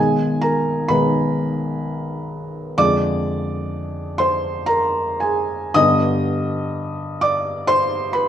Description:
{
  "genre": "classical, romantic nocturne for solo piano",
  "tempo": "53-66 BPM",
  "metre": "3/4",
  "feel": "rubato",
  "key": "unclear",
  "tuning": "A4 = 440 Hz",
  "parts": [
    { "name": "felt-muted upright piano", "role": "solo", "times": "0.0-8.3 s", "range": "B1 to Eb6", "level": "-18 LUFS", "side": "equal", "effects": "none" }
  ],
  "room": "moderate recital hall reverb, RT60 1.3 s",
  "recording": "none",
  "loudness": "-18 LUFS",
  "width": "side -10 dB against mid",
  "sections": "0.0-8.3 A section",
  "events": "none",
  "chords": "0.0 G#m/B; 2.8 Ddim/F; 5.8 G",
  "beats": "0.92 1.85 | 2.80 3.73 4.71 | 5.78 6.78 7.70"
}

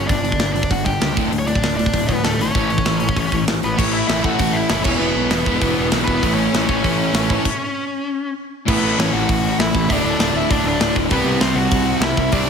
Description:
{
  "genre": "punk rock",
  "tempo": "196 BPM",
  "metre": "4/4",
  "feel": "straight",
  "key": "unclear",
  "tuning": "A4 = 439 Hz",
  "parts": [
    { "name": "nasal lead guitar with a parked wah", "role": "melody", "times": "0.0-12.5 s", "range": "A3 to G5", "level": "-22 LUFS", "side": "left 2 dB", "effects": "overdrive, slapback echo" },
    { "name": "crunchy overdriven guitar", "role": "riff", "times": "0.0-12.5 s", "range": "D2 to C4", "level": "-23 LUFS", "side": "right 12 dB", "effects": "none" },
    { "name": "distorted electric guitar", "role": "riff", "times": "0.0-12.5 s", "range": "D2 to C4", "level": "-23 LUFS", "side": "left 10 dB", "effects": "distortion" },
    { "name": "fuzz picked electric bass", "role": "bass", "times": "0.0-12.5 s", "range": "D1 to C#2", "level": "-24 LUFS", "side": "right 1 dB", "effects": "overdrive" },
    { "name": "tight metal drum kit", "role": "drums", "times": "0.1-12.4 s", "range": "crash cymbal, hi-hat, kick drum, snare drum", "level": "-21 LUFS", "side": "equal", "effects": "none" },
    { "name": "fuzz guitar", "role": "riff", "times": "6.2-12.5 s", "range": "D2 to C4", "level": "-26 LUFS", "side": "equal", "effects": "distortion, slapback echo" }
  ],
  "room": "moderate lush hall reverb, RT60 1.7 s, small room reverb",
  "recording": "big arena sound",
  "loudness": "-16 LUFS",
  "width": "side -6 dB against mid",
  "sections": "0.0-3.8 A section; 3.8-8.7 B section; 8.7-12.5 C section",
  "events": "stop 7.4-8.7",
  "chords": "0.0 G5; 1.2 D5; 2.5 A; 4.8 E5; 6.2 A; 9.9 D5; 11.1 C",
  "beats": "| 0.09 0.40 0.71 1.01 | 1.32 1.63 1.94 2.24 | 2.55 2.86 3.16 3.47 | 3.78 4.08 4.39 4.70 | 5.00 5.31 5.61 5.92 | 6.22 6.53 6.84 7.14 | 7.45 7.75 8.06 8.36 | 8.67 8.97 9.28 9.58 | 9.89 10.19 10.50 10.80 | 11.11 11.41 11.71 12.02 | 12.32"
}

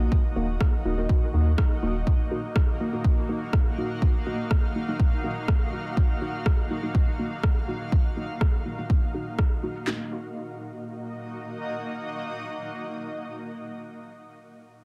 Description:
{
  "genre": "dub techno",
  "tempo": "123 BPM",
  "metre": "4/4",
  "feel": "swing 53% on 16ths",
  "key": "Eb minor",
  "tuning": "A4 = 438 Hz",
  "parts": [
    { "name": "granular cloud pad", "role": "sustained chords", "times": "0.0-14.3 s", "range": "Bb3 to F5", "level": "-36 LUFS", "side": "equal", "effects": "built-in reverb, sidechain pumping" },
    { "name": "deep mellow chord stab", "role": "stabs", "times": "0.0-14.3 s", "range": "Bb3 to Gb4", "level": "-35 LUFS", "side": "equal", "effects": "chorus, phaser, sidechain pumping, dub echo" },
    { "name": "warm sub bass", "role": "bass", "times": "0.0-2.0 s", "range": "Eb1 to Eb2", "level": "-26 LUFS", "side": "equal", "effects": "sidechain pumping" },
    { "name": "deep house drum kit", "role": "drums", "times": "0.1-10.0 s", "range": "handclaps, kick drum, snare drum", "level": "-25 LUFS", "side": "equal", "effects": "overdrive" },
    { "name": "electronic rim click", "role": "drums", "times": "0.6-9.5 s", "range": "none", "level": "-39 LUFS", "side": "equal", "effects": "overdrive, low-pass filter on snare, low-pass filter on room" }
  ],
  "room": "light reverb",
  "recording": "dense, heavily limited modern master",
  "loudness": "-26 LUFS",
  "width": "mono",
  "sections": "0.0-9.9 A section; 9.9-13.8 B section",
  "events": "filter sweep on synth stab 0.0-9.9",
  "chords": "0.0 Ebm",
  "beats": "| 0.12 0.60 1.09 1.58 | 2.07 2.56 3.04 3.53 | 4.02 4.51 5.00 5.48 | 5.97 6.46 6.95 7.43 | 7.92 8.41 8.90 9.39 | 9.87 10.36 10.85 11.34 | 11.82 12.31 12.80 13.29"
}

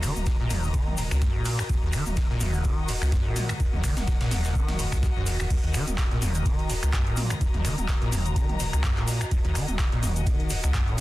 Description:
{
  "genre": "acid house",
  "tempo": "126 BPM",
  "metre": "4/4",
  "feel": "swing 56% on 16ths",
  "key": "Eb minor pentatonic",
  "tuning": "A4 = 440 Hz",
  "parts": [
    { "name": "acid bass, saw", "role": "riff", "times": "0.0-11.0 s", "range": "Eb2 to Eb3", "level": "-28 LUFS", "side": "equal", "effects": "overdrive, ensemble chorus, sidechain pumping" },
    { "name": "round analog bass", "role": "bass", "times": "0.0-11.0 s", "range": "Eb1 to Db2", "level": "-30 LUFS", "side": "equal", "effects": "sidechain pumping" },
    { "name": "breakbeat sampler-style drum kit", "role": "drums", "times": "0.0-11.0 s", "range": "ride cymbal, snare drum", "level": "-42 LUFS", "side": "right 2 dB", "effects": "overdrive, high-pass filter on cymbals, high-pass filter on snare, high-pass filter on room" },
    { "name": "electro analog drum machine", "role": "drums", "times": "0.0-11.0 s", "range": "crash cymbal, finger snaps, handclaps, hi-hat, toms", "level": "-32 LUFS", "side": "right 1 dB", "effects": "overdrive" },
    { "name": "tube shaker", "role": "percussion", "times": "0.0-11.0 s", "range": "none", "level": "-38 LUFS", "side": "left 5 dB", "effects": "none" },
    { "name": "muted studio string section", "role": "texture", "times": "0.0-11.0 s", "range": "Gb4 to Bb5", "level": "-36 LUFS", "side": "left 3 dB", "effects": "sidechain pumping" },
    { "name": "electronic kick drum", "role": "drums", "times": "0.3-10.8 s", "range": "none", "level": "-26 LUFS", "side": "equal", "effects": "overdrive" }
  ],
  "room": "little or no reverb",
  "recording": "dense, heavily limited modern master",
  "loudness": "-23 LUFS",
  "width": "side -17 dB against mid",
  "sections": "0.0-11.0 A section",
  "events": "none",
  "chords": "0.0 Ebm",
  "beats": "0.27 0.74 1.22 | 1.70 2.17 2.65 3.12 | 3.60 4.08 4.55 5.03 | 5.51 5.98 6.46 6.93 | 7.41 7.89 8.36 8.84 | 9.31 9.79 10.27 10.74"
}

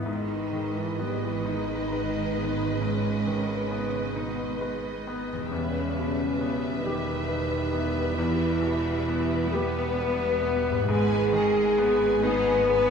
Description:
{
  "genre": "cinematic, emotional film score for orchestra",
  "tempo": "44 BPM (dotted quarters)",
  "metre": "6/8",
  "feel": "rubato",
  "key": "G# harmonic minor",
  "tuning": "A4 = 441 Hz",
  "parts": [
    { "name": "bright baby grand piano", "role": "accompaniment", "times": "0.0-12.9 s", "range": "E2 to B4", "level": "-31 LUFS", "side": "left 1 dB", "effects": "none" },
    { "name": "mellow French horn section", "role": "sustained chords", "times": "0.0-12.9 s", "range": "B3 to B4", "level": "-28 LUFS", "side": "left 2 dB", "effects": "none" },
    { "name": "concert harp", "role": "arpeggios", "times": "0.0-12.9 s", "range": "E2 to B5", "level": "-37 LUFS", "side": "left 3 dB", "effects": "none" },
    { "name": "warm studio cello section", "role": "bass", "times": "0.0-12.9 s", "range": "B2 to B3", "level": "-33 LUFS", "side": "right 4 dB", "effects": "none" },
    { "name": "rich studio violin section", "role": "melody", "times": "0.1-12.9 s", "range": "D#5 to G#5", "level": "-38 LUFS", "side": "left 2 dB", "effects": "none" },
    { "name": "rich studio violin section", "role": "second line", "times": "0.1-12.9 s", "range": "G#4 to B4", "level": "-34 LUFS", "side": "equal", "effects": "none" },
    { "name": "rich symphonic viola section", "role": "accompaniment", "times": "0.1-12.9 s", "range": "G3 to B3", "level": "-38 LUFS", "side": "right 2 dB", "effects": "none" },
    { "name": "rich studio double bass section", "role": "bass", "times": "0.1-12.9 s", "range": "E1 to G#1", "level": "-33 LUFS", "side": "right 5 dB", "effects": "none" }
  ],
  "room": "wet scoring stage reverb, RT60 2.0 s",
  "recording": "recorded in a church or concert hall",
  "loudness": "-24 LUFS",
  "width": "side -6 dB against mid",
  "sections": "0.1-12.9 A section",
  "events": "none",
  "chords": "0.1 G#m; 5.5 Em; 10.9 G#m",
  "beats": "| 0.07 1.45 | 2.80 4.15 | 5.51 6.84 | 8.17 9.54 | 10.88 12.24"
}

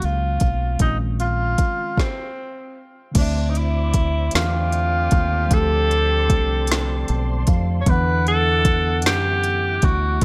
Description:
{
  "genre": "slow six-eight R&B",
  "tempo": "51 BPM (dotted quarters)",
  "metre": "6/8",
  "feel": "straight",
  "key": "unclear",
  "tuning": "A4 = 440 Hz",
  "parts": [
    { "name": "breathy tenor saxophone", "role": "melody", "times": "0.0-10.2 s", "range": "C4 to C#5", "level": "-25 LUFS", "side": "equal", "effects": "none" },
    { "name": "mellow tine electric piano", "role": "accompaniment", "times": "0.0-10.2 s", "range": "D3 to A5", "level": "-31 LUFS", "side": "equal", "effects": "none" },
    { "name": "deep dub fingered electric bass", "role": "bass", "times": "0.0-10.2 s", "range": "Bb1 to F#2", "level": "-24 LUFS", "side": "equal", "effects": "none" },
    { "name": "smooth R&B drum kit", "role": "drums", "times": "0.0-10.2 s", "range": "crash cymbal, hi-hat, kick drum, snare drum", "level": "-23 LUFS", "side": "equal", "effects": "none" },
    { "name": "tonewheel organ", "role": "sustained chords", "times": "3.1-10.2 s", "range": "E4 to D6", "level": "-39 LUFS", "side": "equal", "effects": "chorus vibrato, slow rotary speaker" },
    { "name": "warm horn section", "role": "stabs", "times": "4.3-10.2 s", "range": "D3 to F#5", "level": "-34 LUFS", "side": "equal", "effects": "none" }
  ],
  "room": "little or no reverb",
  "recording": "none",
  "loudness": "-20 LUFS",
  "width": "mono",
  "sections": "0.0-3.2 A section; 3.2-10.2 B section",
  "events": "stop 2.0-3.2; tine electric piano fill 6.7-7.9",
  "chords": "0.0 Ebm11 (rootless); 0.8 Bbm11; 2.0 N.C.; 3.2 Dm9; 7.9 Em9",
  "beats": "| 0.80 1.98 | 3.15 4.33 | 5.51 6.68 | 7.86 9.04 | 10.21"
}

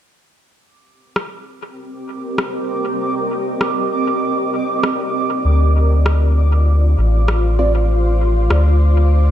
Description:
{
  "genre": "ambient dub",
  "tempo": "98 BPM",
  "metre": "4/4",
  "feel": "swing 56% on 16ths",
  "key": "C dorian",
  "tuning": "A4 = 439 Hz",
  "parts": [
    { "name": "bubbling stepped-filter texture", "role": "texture", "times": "0.5-9.3 s", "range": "D6", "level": "-25 LUFS", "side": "right 6 dB", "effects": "chorus, built-in reverb" },
    { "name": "granular cloud pad", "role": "sustained chords", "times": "1.8-9.3 s", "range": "C4 to Eb5", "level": "-21 LUFS", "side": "equal", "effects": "built-in reverb" },
    { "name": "electronic rim click", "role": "drums", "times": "1.2-8.6 s", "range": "none", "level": "-24 LUFS", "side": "left 1 dB", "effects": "small room ambience, dub echo" },
    { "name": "soft dub sub bass", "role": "bass", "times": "5.4-9.3 s", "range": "A1 to D2", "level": "-13 LUFS", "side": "equal", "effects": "tube saturation" },
    { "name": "filtered dub chord stab", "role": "stabs", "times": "7.6-7.7 s", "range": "C4 to D5", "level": "-23 LUFS", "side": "right 3 dB", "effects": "phaser, dub echo" }
  ],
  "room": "light reverb, digital ambience",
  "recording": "none",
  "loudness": "-14 LUFS",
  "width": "side -11 dB against mid",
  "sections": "0.5-9.3 A section",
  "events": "filter sweep on ambient pad 0.5-9.3",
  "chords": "0.5 Cm9; 5.4 Dm7",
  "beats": "| 0.55 1.16 1.77 2.38 | 3.00 3.61 4.22 4.83 | 5.45 6.06 6.67 7.28 | 7.90 8.51 9.12"
}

